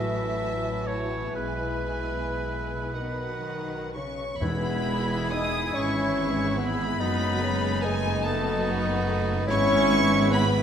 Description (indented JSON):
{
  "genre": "classical",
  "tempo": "36-49 BPM (dotted quarters)",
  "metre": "6/8",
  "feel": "rubato",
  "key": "E major",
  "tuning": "A4 = 440 Hz",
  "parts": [
    { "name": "rich chamber violin section", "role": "melody", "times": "0.0-10.6 s", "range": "F#5 to D#6", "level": "-32 LUFS", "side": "right 1 dB", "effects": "none" },
    { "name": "clear oboe", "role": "second line", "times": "0.0-10.5 s", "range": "D#4 to E5", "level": "-35 LUFS", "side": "right 1 dB", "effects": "none" },
    { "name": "mellow clarinet", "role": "second line", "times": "0.0-10.6 s", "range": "F#4 to D#5", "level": "-34 LUFS", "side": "right 1 dB", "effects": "none" },
    { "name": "rich chamber violin section", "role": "second line", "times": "0.0-10.6 s", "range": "D#4 to E5", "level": "-37 LUFS", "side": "left 1 dB", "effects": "none" },
    { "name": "mellow bassoon", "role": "accompaniment", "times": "0.0-10.5 s", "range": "D#3 to E4", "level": "-34 LUFS", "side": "equal", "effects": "none" },
    { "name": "warm chamber viola section", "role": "accompaniment", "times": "0.0-10.6 s", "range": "E3 to B4", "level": "-34 LUFS", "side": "right 2 dB", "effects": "none" },
    { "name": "warm French horn section", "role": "sustained chords", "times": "0.0-10.6 s", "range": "F#3 to E4", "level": "-31 LUFS", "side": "left 4 dB", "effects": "none" },
    { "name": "concert harp", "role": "arpeggios", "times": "0.0-10.6 s", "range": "E2 to A5", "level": "-38 LUFS", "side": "left 8 dB", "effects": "none" },
    { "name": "clear chamber double bass section", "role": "bass", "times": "0.0-10.6 s", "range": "E1 to B1", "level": "-32 LUFS", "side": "right 2 dB", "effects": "none" },
    { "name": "rich chamber cello section", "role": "bass", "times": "0.0-10.6 s", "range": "E2 to D#3", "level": "-34 LUFS", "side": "right 1 dB", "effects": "none" },
    { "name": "silver concert flute", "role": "second line", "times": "4.4-10.5 s", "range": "G#6 to A6", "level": "-36 LUFS", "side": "left 2 dB", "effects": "none" },
    { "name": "timpani", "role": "percussion", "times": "4.4-5.7 s", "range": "E2", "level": "-33 LUFS", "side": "left 1 dB", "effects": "none" }
  ],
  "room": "moderate recital hall reverb, RT60 1.7 s",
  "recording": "none",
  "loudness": "-24 LUFS",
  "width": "side -8 dB against mid",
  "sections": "0.0-4.4 A section; 4.4-10.6 B section",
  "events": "none",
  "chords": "0.0 F#m7/A; 1.3 E/B; 2.9 B; 4.4 E; 7.0 B7/F#; 9.5 E/G#",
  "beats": "| 1.35 2.94 | 4.41 5.74 | 6.99 8.24 | 9.48"
}